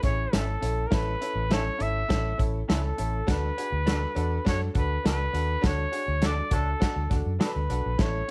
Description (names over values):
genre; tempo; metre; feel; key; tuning
uptempo 1960s-style soul; 102 BPM; 4/4; straight; unclear; A4 = 439 Hz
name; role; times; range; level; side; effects
breathy trumpet; melody; 0.0-8.3 s; A4 to E5; -33 LUFS; equal; none
bright upright piano; accompaniment; 0.0-8.3 s; C#4 to A4; -37 LUFS; equal; none
vintage muted fingered electric bass; bass; 0.0-8.2 s; G#1 to F#2; -31 LUFS; equal; none
warm soul drum kit; drums; 0.0-8.1 s; hi-hat, kick drum, snare drum; -30 LUFS; equal; none
electric guitar through a small old amp; stabs; 0.3-7.5 s; C#4 to A4; -39 LUFS; equal; none
clear horn section; second line; 6.2-6.7 s; F#3 to A4; -39 LUFS; equal; none
room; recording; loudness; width
light reverb; dark, warm production; -27 LUFS; mono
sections
0.0-8.3 A section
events
band accent 5.6-8.0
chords
0.0 A; 3.3 D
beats
0.33 | 0.92 1.51 2.10 2.69 | 3.28 3.87 4.45 5.04 | 5.63 6.22 6.81 7.40 | 7.99